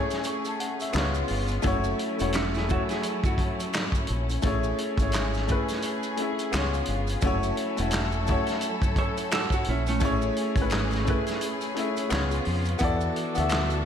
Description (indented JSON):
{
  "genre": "R&B, neo-soul",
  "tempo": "86 BPM",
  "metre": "4/4",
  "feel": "swing 59% on 16ths",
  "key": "A major",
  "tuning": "A4 = 440 Hz",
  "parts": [
    { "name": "clear concert grand piano", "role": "accompaniment", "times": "0.0-13.9 s", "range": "A3 to C#6", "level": "-29 LUFS", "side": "left 2 dB", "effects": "slapback echo" },
    { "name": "rich studio string section", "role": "sustained chords", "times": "0.0-13.9 s", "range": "C#3 to A4", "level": "-33 LUFS", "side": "equal", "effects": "none" },
    { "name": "warm soul drum kit", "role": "drums", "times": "0.1-13.8 s", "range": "handclaps, hi-hat, kick drum, snare drum", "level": "-29 LUFS", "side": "equal", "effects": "none" },
    { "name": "maracas and finger snaps", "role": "percussion", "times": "0.1-13.8 s", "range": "none", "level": "-42 LUFS", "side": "right 2 dB", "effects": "none" },
    { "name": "deep dub fingered electric bass", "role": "bass", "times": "0.9-13.9 s", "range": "E1 to E#2", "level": "-28 LUFS", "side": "equal", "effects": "none" },
    { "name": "vintage hollow-body jazz guitar", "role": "second line", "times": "2.4-4.3, 9.0-10.2 s", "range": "A3 to C#5", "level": "-32 LUFS", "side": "right 4 dB", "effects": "slapback echo" }
  ],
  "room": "moderate scoring stage reverb, RT60 1.6 s, studio reverb",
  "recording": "big arena sound",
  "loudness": "-24 LUFS",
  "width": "side -8 dB against mid",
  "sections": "0.0-13.9 A section",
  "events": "none",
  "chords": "0.0 Amaj7; 0.9 C#7; 1.6 F#m7; 4.4 Amaj7; 6.5 C#7; 7.2 F#m7; 10.0 Amaj7; 12.1 C#7; 12.8 E9sus4"
}